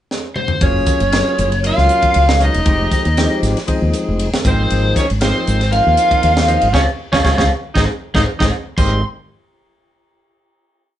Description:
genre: electric jazz fusion.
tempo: 118 BPM.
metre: 4/4.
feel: swing 53% on 16ths.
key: Ab major.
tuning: A4 = 440 Hz.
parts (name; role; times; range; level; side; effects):
tight funk drum kit; drums; 0.1-8.9 s; crash cymbal, hi-hat, kick drum, ride cymbal, snare drum, toms; -19 LUFS; equal; none.
lead guitar through a small cranked amp; melody; 0.4-9.0 s; Ab4 to C6; -17 LUFS; equal; overdrive.
clear tenor saxophone; second line; 0.6-9.0 s; C4 to F4; -22 LUFS; right 3 dB; none.
percussive tonewheel organ; accompaniment; 0.6-9.0 s; F3 to Bb4; -22 LUFS; left 2 dB; slow rotary speaker, overdrive.
mellow fretless electric bass; bass; 0.6-9.0 s; Fb1 to Eb2; -17 LUFS; equal; none.
room: moderate studio reverb, RT60 0.6 s.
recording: band playing live in one room, nothing above 10.4 kHz.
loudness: -13 LUFS.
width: side -12 dB against mid.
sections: 0.0-0.6 pickup bar; 0.6-8.8 A section; 8.8-10.8 final chord.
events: drum fill 0.1-0.6; band accent 6.7-8.8; tonewheel organ fill 8.0-8.8.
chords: 0.0 N.C.; 0.6 Gbmaj9; 2.7 Fm9; 4.4 Ab69; 6.7 Dbmaj7; 7.8 Ab; 8.8 Abmaj9.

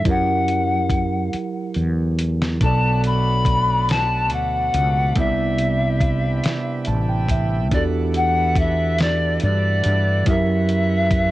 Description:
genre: slow six-eight R&B.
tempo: 47 BPM (dotted quarters).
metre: 6/8.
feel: straight.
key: E minor.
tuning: A4 = 440 Hz.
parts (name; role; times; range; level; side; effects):
bright reedy pan flute; melody; 0.0-11.3 s; D5 to B5; -22 LUFS; left 2 dB; cassette tape, plate reverb, analog delay.
mellow tine electric piano; accompaniment; 0.0-11.3 s; B2 to A5; -24 LUFS; right 4 dB; none.
mellow fretless electric bass; bass; 0.1-11.3 s; A1 to G2; -21 LUFS; equal; none.
dusty soul sampler-style drum kit; drums; 0.1-11.3 s; hi-hat, kick drum, snare drum; -22 LUFS; equal; none.
bright tonewheel organ; sustained chords; 2.6-11.3 s; C3 to F#5; -32 LUFS; equal; overdrive, slow rotary speaker, plate reverb.
room: light reverb.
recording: home recording on cassette.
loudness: -17 LUFS.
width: side -16 dB against mid.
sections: 0.0-11.3 A section.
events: drum fill 1.3-2.6; tine electric piano fill 6.4-7.7.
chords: 0.1 F#7b9; 2.6 Bm7; 5.2 Cmaj9; 7.7 Em11; 10.3 F#7b9.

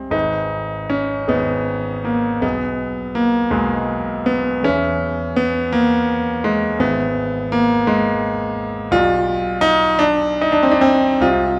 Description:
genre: classical, romantic nocturne for solo piano.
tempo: 46-58 BPM (dotted quarters).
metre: 6/8.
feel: rubato.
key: G# minor.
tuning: A4 = 445 Hz.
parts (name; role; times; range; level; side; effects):
clear grand piano; solo; 0.0-11.6 s; G#1 to E5; -18 LUFS; equal; none.
room: moderate concert hall reverb, RT60 1.8 s.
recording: recorded in a church or concert hall.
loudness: -18 LUFS.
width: mono.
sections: 0.1-11.6 A section.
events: none.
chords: 0.1 G#m; 2.4 G#m/B; 4.6 E; 6.8 E/G#; 8.9 G7/B.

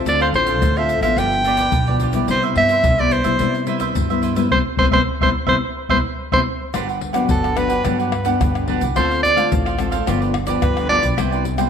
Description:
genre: samba and choro.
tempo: 108 BPM.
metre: 4/4.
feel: straight.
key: C major, G major from 6.7 s.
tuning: A4 = 440 Hz.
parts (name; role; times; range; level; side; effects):
cavaquinho; accompaniment; 0.0-11.7 s; D4 to G5; -25 LUFS; right 8 dB; none.
nylon-string guitar; accompaniment; 0.0-11.7 s; G2 to A4; -22 LUFS; left 6 dB; none.
bright soprano saxophone; melody; 0.1-11.1 s; A4 to G5; -19 LUFS; right 1 dB; tape echo.
upright bass; bass; 0.1-11.7 s; G1 to C3; -24 LUFS; right 1 dB; none.
egg shaker, surdo, pandeiro and tamborim; percussion; 0.1-11.7 s; none; -24 LUFS; left 2 dB; none.
room: wet echo chamber reverb, RT60 1.7 s, studio ambience.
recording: 1960s-style stereo with parts hard left and right.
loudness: -16 LUFS.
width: side -7 dB against mid.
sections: 0.0-6.7 A section; 6.7-11.7 B section.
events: band accent 4.5-6.7; drum fill 6.3-6.7; soprano saxophone solo 6.7-11.7.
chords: 0.1 Dm7; 1.2 G7; 2.3 Cmaj7; 6.7 Gmaj7; 9.0 Dm7; 10.1 G7; 11.2 Cmaj7.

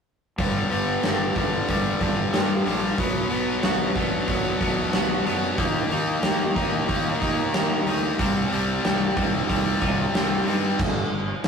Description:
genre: quiet-loud alternative rock.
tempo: 92 BPM.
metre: 4/4.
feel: straight.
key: G major.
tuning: A4 = 441 Hz.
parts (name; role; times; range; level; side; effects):
electric guitar through a small old amp; arpeggios; 0.4-11.5 s; G2 to G4; -30 LUFS; right 2 dB; none.
distorted electric guitar; riff; 0.4-10.8 s; G2 to Eb4; -25 LUFS; left 2 dB; overdrive.
fuzz fingered electric bass; bass; 0.4-11.5 s; G1 to Eb3; -29 LUFS; right 1 dB; overdrive.
big rock drum kit; drums; 0.4-11.5 s; crash cymbal, hi-hat, kick drum, snare drum; -25 LUFS; equal; none.
room: light reverb.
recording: rough rehearsal-room recording, tube saturation.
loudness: -21 LUFS.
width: side -6 dB against mid.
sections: 0.4-10.8 A section.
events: none.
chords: 0.4 G; 3.0 Bm; 5.6 Eb; 8.2 Cm; 10.8 G5.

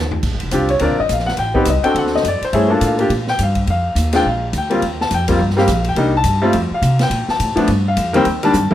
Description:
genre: jazz, small-group swing and bop.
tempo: 209 BPM.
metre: 4/4.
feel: swing 60% on 8ths.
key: Bb major.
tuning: A4 = 438 Hz.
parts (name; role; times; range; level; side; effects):
upright bass; bass; 0.0-8.7 s; F1 to C3; -19 LUFS; equal; none.
swinging big-band drum kit; drums; 0.1-8.7 s; crash cymbal, hi-hat, kick drum, ride cymbal, snare drum, toms; -24 LUFS; equal; none.
clear baby grand piano; accompaniment; 0.5-8.7 s; Eb3 to A5; -16 LUFS; left 1 dB; none.
room: moderate studio reverb, RT60 0.9 s.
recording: none.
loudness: -14 LUFS.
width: side -12 dB against mid.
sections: 0.2-8.7 A section.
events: drum fill 0.0, 8.5.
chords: 0.2 Bb6; 1.4 Am7b5; 2.0 D7; 2.5 Gm7; 3.7 Fm7; 4.2 Bb; 4.8 Eb69; 6.0 Cm7; 6.5 F5; 7.1 Bb; 7.7 F9sus4.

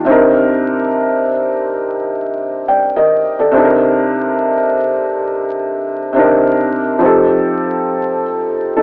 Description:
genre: hip hop.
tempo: 69 BPM.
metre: 4/4.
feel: swing 64% on 16ths.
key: C dorian.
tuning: A4 = 442 Hz.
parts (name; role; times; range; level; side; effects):
felt-muted upright piano; solo; 0.0-8.8 s; C3 to G5; -14 LUFS; equal; cassette tape.
room: moderate spring reverb, RT60 1.2 s, studio reverb.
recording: home recording on cassette, vinyl crackle, AM radio sound.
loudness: -15 LUFS.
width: mono.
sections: 0.0-3.5 A section; 3.5-8.8 B section.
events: none.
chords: 0.1 Cm9; 7.0 F7.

